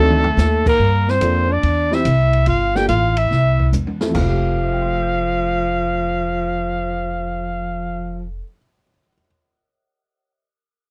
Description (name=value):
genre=jazz, small-group swing and bop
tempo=143 BPM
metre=4/4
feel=swing 68% on 8ths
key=F major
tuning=A4 = 438 Hz
part: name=clear trumpet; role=melody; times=0.0-8.3 s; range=A4 to G5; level=-23 LUFS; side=equal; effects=none
part: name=breathy tenor saxophone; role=second line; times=0.0-8.3 s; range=F3 to G4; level=-26 LUFS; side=equal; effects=none
part: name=warm baby grand piano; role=accompaniment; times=0.0-9.3 s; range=F2 to C7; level=-26 LUFS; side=equal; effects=none
part: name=upright bass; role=bass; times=0.0-8.4 s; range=F1 to G2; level=-22 LUFS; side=equal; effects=none
part: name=open jazz drum kit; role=drums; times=0.1-4.3 s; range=crash cymbal, hi-hat, kick drum, ride cymbal, snare drum, toms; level=-27 LUFS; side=equal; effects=none
room=little or no reverb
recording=dry, close 1970s-style studio recording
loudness=-18 LUFS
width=mono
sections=0.8-4.1 A section; 4.1-7.5 B section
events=drum fill 0.0-0.4, 3.7-4.1; band accent 0.6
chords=0.0 D7b9; 0.8 Gm9; 1.6 Cadd9; 2.5 Gm9; 3.3 C; 4.1 Fmaj9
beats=0.38 | 0.80 1.22 1.63 2.05 | 2.47 2.89 3.31 3.73 | 4.15 4.57 4.99 5.41 | 5.83 6.25 6.67 7.09